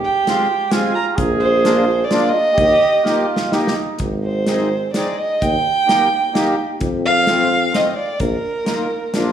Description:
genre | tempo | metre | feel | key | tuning
alpine folk, alpine dance band | 128 BPM | 3/4 | rubato | Eb major | A4 = 440 Hz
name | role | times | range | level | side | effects
dark fiddle | melody | 0.0-9.3 s | Bb4 to Bb5 | -17 LUFS | right 2 dB | none
mellow trumpet | second line | 0.0-4.0 s | Eb4 to Ab4 | -22 LUFS | right 3 dB | none
accordion | accompaniment | 0.3-9.3 s | Ab3 to Ab4 | -22 LUFS | left 2 dB | light tremolo tuning
natural country drum kit | drums | 0.3-9.2 s | hi-hat, kick drum, snare drum | -24 LUFS | equal | none
clear tuba | bass | 1.2-9.3 s | Ab1 to F2 | -21 LUFS | left 1 dB | none
room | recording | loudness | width
moderate recital hall reverb, RT60 1.7 s | small room reverb | -15 LUFS | side -9 dB against mid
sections
0.0-4.0 A section; 4.0-9.3 A section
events
drum fill 3.0-4.0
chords
0.0 Fm; 1.2 Bb7; 2.6 Eb; 4.0 Ab; 5.4 Eb; 6.8 F; 8.2 Bbsus4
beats
0.26 0.72 | 1.18 1.64 2.10 | 2.57 3.04 3.52 | 3.99 4.47 4.94 | 5.41 5.88 6.34 | 6.81 7.27 7.74 | 8.20 8.66 9.14

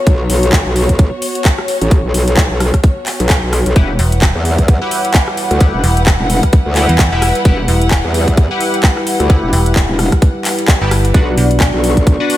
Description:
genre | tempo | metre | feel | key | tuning
bass house | 130 BPM | 4/4 | swing 58% on 16ths | E dorian | A4 = 439 Hz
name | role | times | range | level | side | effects
dark studio string section | texture | 0.0-12.4 s | B3 to C#6 | -21 LUFS | left 1 dB | sidechain pumping
metallic wobble bass | bass | 0.1-12.2 s | E1 to E2 | -15 LUFS | equal | distortion, chorus, overdrive, sidechain pumping
electronic kick drum | drums | 0.1-12.2 s | none | -10 LUFS | equal | studio reverb
garage drum kit | drums | 0.1-12.4 s | handclaps, hi-hat, rim click | -19 LUFS | left 1 dB | studio reverb
dark analog pad | sustained chords | 3.8-12.4 s | G3 to F#5 | -19 LUFS | equal | chorus, sidechain pumping
band-passed chord stab | stabs | 3.8-12.4 s | D4 to A5 | -22 LUFS | left 2 dB | phaser, analog chorus, sidechain pumping, diffuse ambient delay
metallic FM bass | bass | 4.0-11.7 s | E1 to E2 | -13 LUFS | equal | overdrive, sidechain pumping
room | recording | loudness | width
light reverb, digital ambience | none | -10 LUFS | side -14 dB against mid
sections
0.0-12.4 A section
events
none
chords
0.0 B5; 3.8 Emadd9; 11.1 Bm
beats
| 0.07 0.53 0.99 1.45 | 1.91 2.38 2.84 3.30 | 3.76 4.22 4.68 5.14 | 5.61 6.07 6.53 6.99 | 7.45 7.91 8.38 8.84 | 9.30 9.76 10.22 10.68 | 11.14 11.61 12.07

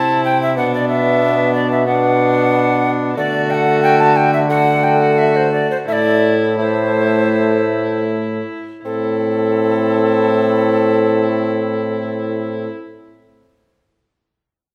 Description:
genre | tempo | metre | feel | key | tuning
classical, renaissance-style consort dance | 78-93 BPM | 4/4 | straight | A dorian | A4 = 441 Hz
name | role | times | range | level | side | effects
mellow alto recorder | melody | 0.0-12.7 s | A4 to A5 | -20 LUFS | equal | none
rich viola | second line | 0.0-12.7 s | D4 to F#4 | -23 LUFS | equal | none
mellow bassoon | accompaniment | 0.0-12.7 s | A3 to C4 | -22 LUFS | equal | none
mellow trombone | bass | 0.0-12.7 s | A2 to D3 | -22 LUFS | equal | none
room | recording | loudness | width
wet recital hall reverb, RT60 1.6 s | none | -16 LUFS | mono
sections
0.0-8.8 A section; 8.8-11.9 B section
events
slowing down 1.9-8.8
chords
0.0 Am; 0.6 Bm; 3.2 D; 5.9 Am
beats
| 0.57 1.22 1.87 2.52 | 3.17 3.83 4.49 5.18 | 5.88 6.59 7.33 8.08 | 8.85 9.62 10.39 11.16

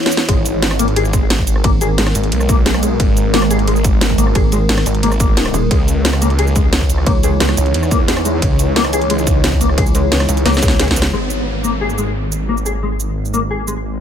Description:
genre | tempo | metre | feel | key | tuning
dark technical drum and bass | 177 BPM | 4/4 | straight | unclear | A4 = 439 Hz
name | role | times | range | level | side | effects
deep dark ambient pad | sustained chords | 0.0-14.0 s | E3 to B5 | -21 LUFS | equal | chorus, built-in reverb, sidechain pumping
drum and bass drum kit | drums | 0.0-13.7 s | hi-hat, ride cymbal, rim click, shaker, snare drum | -19 LUFS | right 1 dB | none
mellow electric guitar | arpeggios | 0.3-13.7 s | G#3 to G#4 | -21 LUFS | left 5 dB | ensemble chorus, sidechain pumping, ping-pong delay
snarling distorted saw bass | bass | 0.3-14.0 s | G#1 to E2 | -17 LUFS | equal | distortion, overdrive
electronic kick drum | drums | 0.3-10.9 s | none | -16 LUFS | equal | none
metallic wobble bass | bass | 1.6-2.1, 4.4-7.6, 9.8-11.1 s | D#1 to C#2 | -16 LUFS | equal | chorus
downlifter | sound effects | 11.1-13.8 s | none | -27 LUFS | equal | none
room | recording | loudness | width
digital ambience | none | -12 LUFS | side -9 dB against mid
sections
0.0-11.1 A section; 11.1-14.0 B section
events
break 0.0; drop 0.0-11.1; drum fill 0.0, 10.5-11.1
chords
0.3 G#madd9; 5.7 C#madd9; 11.1 G#sus2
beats
| 0.29 0.62 0.96 1.30 | 1.64 1.98 2.32 2.66 | 3.00 3.34 3.68 4.01 | 4.35 4.69 5.03 5.37 | 5.71 6.05 6.39 6.73 | 7.07 7.40 7.74 8.08 | 8.42 8.76 9.10 9.44 | 9.78 10.12 10.46 10.79 | 11.13 11.47 11.81 12.15 | 12.49 12.83 13.17 13.51 | 13.85

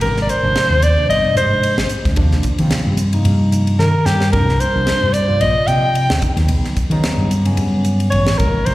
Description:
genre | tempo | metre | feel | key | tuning
electric jazz fusion | 111 BPM | 4/4 | swing 55% on 16ths | unclear | A4 = 440 Hz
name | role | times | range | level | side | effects
warm soprano saxophone | melody | 0.0-8.7 s | G4 to G5 | -17 LUFS | equal | slapback echo, tape echo
tine electric piano | accompaniment | 0.0-8.7 s | C3 to F4 | -22 LUFS | equal | medium tremolo, phaser
woody fretless electric bass | bass | 0.0-8.7 s | G1 to Eb3 | -16 LUFS | equal | none
tight funk drum kit | drums | 0.0-8.7 s | hi-hat, kick drum, ride cymbal, snare drum | -23 LUFS | equal | none
room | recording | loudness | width
light reverb, studio ambience | live gig heard through the venue's PA, recital hall reverb | -13 LUFS | side -16 dB against mid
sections
0.0-8.7 A section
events
drum fill 3.8-4.3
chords
0.0 Ab; 2.2 Ebmaj9; 4.3 Csus2; 6.2 Eb7alt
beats
| 0.02 0.56 1.10 1.64 | 2.18 2.72 3.26 3.80 | 4.34 4.88 5.42 5.96 | 6.50 7.05 7.59 8.13 | 8.67

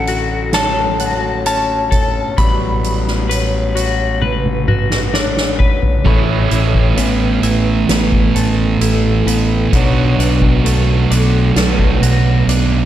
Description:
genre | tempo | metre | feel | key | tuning
post-rock | 65 BPM | 4/4 | straight | A major | A4 = 440 Hz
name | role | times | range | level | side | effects
electric slide guitar | melody | 0.0-4.2 s | F#5 to B5 | -20 LUFS | left 1 dB | slapback echo
pedal steel guitar | sustained chords | 0.0-12.9 s | D3 to B5 | -29 LUFS | left 1 dB | none
twelve-string electric guitar | arpeggios | 0.0-12.9 s | A2 to B4 | -22 LUFS | left 7 dB | slapback echo
vibraphone with medium mallets | arpeggios | 0.0-12.5 s | A4 to D5 | -25 LUFS | left 1 dB | slapback echo
fuzz fingered electric bass | bass | 0.0-12.9 s | A1 to B1 | -18 LUFS | equal | overdrive
soft-mallet drum kit | drums | 0.1-12.7 s | crash cymbal, hi-hat, kick drum, snare drum, toms | -18 LUFS | equal | none
thick fuzz guitar | riff | 6.0-12.9 s | A2 to F#4 | -15 LUFS | right 5 dB | distortion
room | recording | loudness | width
small room ambience | dark, warm production | -12 LUFS | side -12 dB against mid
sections
0.0-6.1 A section; 6.1-12.9 B section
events
drum fill 4.2-6.1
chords
0.0 Bm9/A (rootless); 2.4 Gmaj7/A; 6.1 Aadd9; 9.7 Bm7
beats
0.54 1.46 | 2.38 3.30 4.22 5.14 | 6.05 6.97 7.89 8.81 | 9.73 10.65 11.57 12.49

